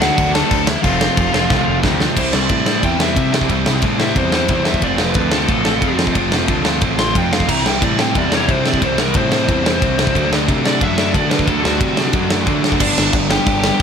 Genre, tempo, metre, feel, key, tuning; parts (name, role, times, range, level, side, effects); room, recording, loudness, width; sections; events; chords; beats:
punk rock; 180 BPM; 4/4; straight; A4 = 442 Hz
biting lead guitar; melody; 0.0-13.8 s; D4 to C6; -21 LUFS; left 1 dB; overdrive, tape echo
crunchy overdriven guitar; riff; 0.0-13.8 s; F2 to F#4; -21 LUFS; right 11 dB
high-gain distorted guitar; riff; 0.0-12.8 s; F2 to F#4; -24 LUFS; equal; distortion
sludgy distorted guitar; riff; 0.0-13.8 s; F2 to F4; -22 LUFS; left 13 dB; overdrive
growling picked electric bass; bass; 0.0-13.8 s; F1 to D3; -22 LUFS; equal; overdrive
big rock drum kit; drums; 0.0-13.8 s; crash cymbal, kick drum, ride cymbal, snare drum; -18 LUFS; equal
light reverb; -13 LUFS; side -7 dB against mid
0.0-2.2 A section; 2.2-12.8 B section; 12.8-13.8 A section
drum fill 1.5-2.2; lead electric guitar solo 2.2-12.8
0.0 D; 0.8 F; 2.2 C; 4.8 F; 7.5 C; 10.2 D; 12.8 G
0.18 0.51 | 0.84 1.17 1.50 1.83 | 2.16 2.50 2.83 3.16 | 3.49 3.82 4.16 4.49 | 4.82 5.16 5.49 5.82 | 6.16 6.49 6.82 7.15 | 7.49 7.82 8.15 8.49 | 8.82 9.15 9.49 9.82 | 10.15 10.48 10.82 11.15 | 11.48 11.81 12.15 12.48 | 12.81 13.14 13.47 13.80